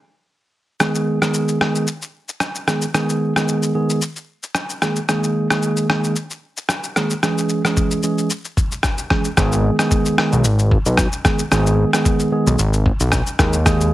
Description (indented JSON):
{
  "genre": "afrobeats",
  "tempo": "112 BPM",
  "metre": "4/4",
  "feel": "swing 55% on 16ths",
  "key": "G# minor",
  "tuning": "A4 = 443 Hz",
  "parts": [
    { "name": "mellow tine electric piano", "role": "accompaniment", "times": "0.8-13.9 s", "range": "D#3 to G#4", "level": "-18 LUFS", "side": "right 1 dB", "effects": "none" },
    { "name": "trip hop sampler-style drum kit", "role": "drums", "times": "0.8-13.9 s", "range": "kick drum, rim click, shaker", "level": "-19 LUFS", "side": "left 1 dB", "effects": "none" },
    { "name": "fat analog bass", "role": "bass", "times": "9.4-13.9 s", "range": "G#1 to D#2", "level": "-16 LUFS", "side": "equal", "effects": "none" }
  ],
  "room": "light reverb",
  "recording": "heavily compressed radio sound",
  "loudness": "-16 LUFS",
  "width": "side -15 dB against mid",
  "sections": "0.8-9.4 A section; 9.4-13.9 B section",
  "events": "break 0.0-0.8",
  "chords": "0.0 N.C.; 0.8 G#m; 4.8 D#sus4; 7.2 C#m; 9.4 G#m; 13.4 D#sus4",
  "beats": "0.27 | 0.80 1.34 1.87 2.41 | 2.95 3.48 4.02 4.55 | 5.09 5.62 6.16 6.70 | 7.23 7.77 8.30 8.84 | 9.37 9.91 10.45 10.98 | 11.52 12.05 12.59 13.12 | 13.66"
}